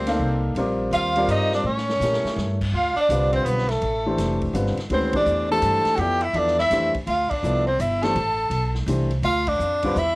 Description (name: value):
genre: modal jazz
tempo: 166 BPM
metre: 3/4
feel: swing 65% on 8ths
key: D dorian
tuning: A4 = 443 Hz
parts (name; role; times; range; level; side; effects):
- breathy soprano saxophone; melody; 0.0-10.2 s; A4 to A5; -23 LUFS; equal; cassette tape
- bright tenor saxophone; second line; 0.0-10.2 s; A3 to A4; -26 LUFS; right 1 dB; cassette tape
- warm upright piano; accompaniment; 0.0-10.0 s; D3 to F5; -25 LUFS; left 1 dB; cassette tape
- upright bass; bass; 0.0-10.2 s; F1 to Bb2; -26 LUFS; equal; none
- swinging big-band drum kit; drums; 0.1-10.1 s; crash cymbal, hi-hat, kick drum, ride cymbal, snare drum; -35 LUFS; equal; cassette tape
room: small room ambience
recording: home recording on cassette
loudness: -19 LUFS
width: side -23 dB against mid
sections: 0.0-2.7 A section; 2.7-10.2 B section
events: drum fill 1.7-2.4; band accent 5.1, 7.3, 9.4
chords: 0.0 Eb; 1.7 A7b9; 2.7 Dm11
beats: 0.20 | 0.57 0.93 1.29 | 1.65 2.01 2.37 | 2.74 3.10 3.46 | 3.82 4.18 4.54 | 4.91 5.27 5.63 | 5.99 6.35 6.71 | 7.07 7.43 7.80 | 8.16 8.52 8.88 | 9.24 9.60 9.96